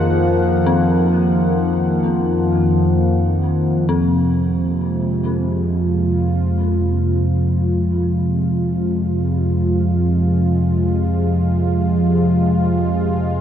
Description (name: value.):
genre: dark ambient drone.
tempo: free time.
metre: none.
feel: none.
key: F phrygian.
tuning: A4 = 440 Hz.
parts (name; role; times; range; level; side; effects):
sweeping resonant pad; sustained chords; 0.0-13.4 s; F2 to Gb5; -20 LUFS; equal; chorus.
dark detuned synth bell; arpeggios; 0.0-13.4 s; C4 to Ab4; -27 LUFS; left 6 dB; chorus, diffuse ambient delay.
analog drone; drone; 0.0-13.4 s; F2 to F3; -17 LUFS; equal; chorus.
room: wet huge ambient reverb, RT60 7.2 s.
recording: none.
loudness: -15 LUFS.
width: side -9 dB against mid.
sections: 0.0-3.9 A section; 3.9-13.4 B section.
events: none.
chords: 0.0 Ebm/F; 3.9 Fm.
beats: free time.